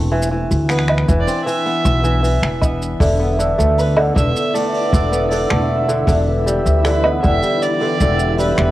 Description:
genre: folktronica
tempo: 78 BPM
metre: 4/4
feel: straight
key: E minor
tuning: A4 = 440 Hz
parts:
  - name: warbly tape-like pad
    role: sustained chords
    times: 0.0-8.7 s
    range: E3 to B4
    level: -28 LUFS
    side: equal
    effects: chorus, built-in reverb, cassette tape
  - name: kora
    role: arpeggios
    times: 0.0-8.7 s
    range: D3 to C4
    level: -20 LUFS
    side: left 1 dB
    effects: cassette tape, analog delay
  - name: upright bass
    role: bass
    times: 0.0-8.7 s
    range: E1 to D2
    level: -18 LUFS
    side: equal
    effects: none
  - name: jazz brush drum kit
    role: drums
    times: 0.2-8.7 s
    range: finger snaps, hi-hat, shaker, woodblock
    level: -24 LUFS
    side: right 1 dB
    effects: cassette tape
  - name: dark violin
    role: melody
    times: 0.7-8.7 s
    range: B4 to E5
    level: -24 LUFS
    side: right 1 dB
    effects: cassette tape, analog delay
  - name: kick drum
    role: drums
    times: 1.1-8.2 s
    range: none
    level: -19 LUFS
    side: equal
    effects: cassette tape
  - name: vibraphone with soft mallets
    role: second line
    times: 3.0-8.7 s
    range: B4 to E6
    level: -21 LUFS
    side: right 1 dB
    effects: cassette tape, analog delay
  - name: flickering grainy texture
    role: texture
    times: 4.0-8.7 s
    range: E4 to E5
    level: -28 LUFS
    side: right 1 dB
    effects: built-in reverb, cassette tape
room: light reverb, small room ambience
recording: home recording on cassette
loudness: -14 LUFS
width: side -15 dB against mid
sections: 0.0-8.7 A section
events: none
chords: 0.0 Cmaj7/E; 3.0 Bm7/E; 6.1 Em7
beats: 0.69 1.46 2.23 | 3.00 3.77 4.54 5.31 | 6.08 6.85 7.62 8.39

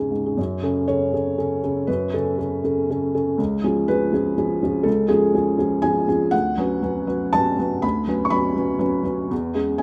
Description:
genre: neoclassical minimalist piano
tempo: 121 BPM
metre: 3/4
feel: rubato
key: F# minor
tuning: A4 = 440 Hz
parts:
  - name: felt-muted upright piano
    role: solo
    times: 0.0-9.8 s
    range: C#2 to C#6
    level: -22 LUFS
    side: equal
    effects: none
room: moderate lush hall reverb, RT60 2.4 s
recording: rough home demo mix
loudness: -22 LUFS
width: mono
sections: 0.4-9.8 A section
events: none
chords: 0.4 F#m; 3.4 C#; 6.3 Bmadd9/D; 9.3 C#m/E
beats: | 0.38 0.88 1.38 | 1.88 2.38 2.88 | 3.38 3.88 4.37 | 4.86 5.35 5.84 | 6.33 6.82 7.33 | 7.83 8.32 8.81 | 9.31 9.81

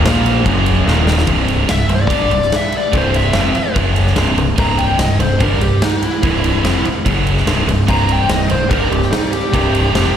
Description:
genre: hard rock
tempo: 146 BPM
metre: 4/4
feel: straight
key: unclear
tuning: A4 = 440 Hz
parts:
  - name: overdriven tonewheel organ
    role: sustained chords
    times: 0.0-1.3, 7.9-10.2 s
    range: F#3 to F5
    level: -28 LUFS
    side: equal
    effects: none
  - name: cranked stack guitar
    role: riff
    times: 0.0-10.2 s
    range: C2 to Bb3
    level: -21 LUFS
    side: left 8 dB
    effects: overdrive, slapback echo
  - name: high-gain distorted guitar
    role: riff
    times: 0.0-10.2 s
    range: C2 to Bb3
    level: -20 LUFS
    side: right 8 dB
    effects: distortion
  - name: overdriven semi-hollow guitar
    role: riff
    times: 0.0-1.3 s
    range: Eb2 to Bb3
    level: -21 LUFS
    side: equal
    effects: slapback echo
  - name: growling fingered electric bass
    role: bass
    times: 0.0-10.1 s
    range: C1 to Bb1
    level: -17 LUFS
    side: equal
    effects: overdrive
  - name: huge arena drum kit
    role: drums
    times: 0.1-10.0 s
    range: kick drum, ride cymbal, snare drum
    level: -19 LUFS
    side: equal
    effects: none
  - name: bluesy overdriven lead guitar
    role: melody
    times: 1.7-10.1 s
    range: Eb4 to Bb5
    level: -19 LUFS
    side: equal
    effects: distortion, slapback echo, digital delay
room: light reverb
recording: live gig heard through the venue's PA, recital hall reverb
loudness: -12 LUFS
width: side -9 dB against mid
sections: 0.0-1.3 A section; 1.3-10.2 B section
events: drum fill 0.9-1.3; lead electric guitar solo 1.3-10.2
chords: 0.1 Bb5; 0.5 F#5; 0.9 Eb5; 1.3 C; 3.8 F#5; 4.2 C; 7.1 F#5; 7.5 C5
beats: 0.06 0.47 0.88 | 1.29 1.70 2.11 2.52 | 2.94 3.35 3.76 4.17 | 4.59 5.00 5.41 5.82 | 6.24 6.65 7.06 7.47 | 7.89 8.30 8.71 9.13 | 9.54 9.95

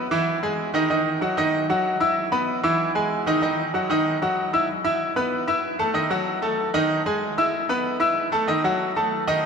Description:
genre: latin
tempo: 190 BPM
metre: 4/4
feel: straight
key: E major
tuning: A4 = 442 Hz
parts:
  - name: bright baby grand piano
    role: solo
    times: 0.0-9.5 s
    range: D#3 to E6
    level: -20 LUFS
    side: equal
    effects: none
room: wet cathedral reverb, RT60 6.8 s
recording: in a vast, echoing space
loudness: -20 LUFS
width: side -6 dB against mid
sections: 0.0-4.7 A section; 4.7-9.5 B section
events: none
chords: 0.0 E; 0.9 D#m; 2.2 E; 3.4 D#m; 4.7 E5; 6.0 D#dim; 7.2 E; 8.5 D#dim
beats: 0.27 0.59 | 0.90 1.22 1.53 1.85 | 2.17 2.48 2.80 3.11 | 3.43 3.75 4.06 4.38 | 4.69 5.01 5.32 5.64 | 5.96 6.27 6.59 6.90 | 7.22 7.53 7.85 8.16 | 8.48 8.79 9.11 9.43

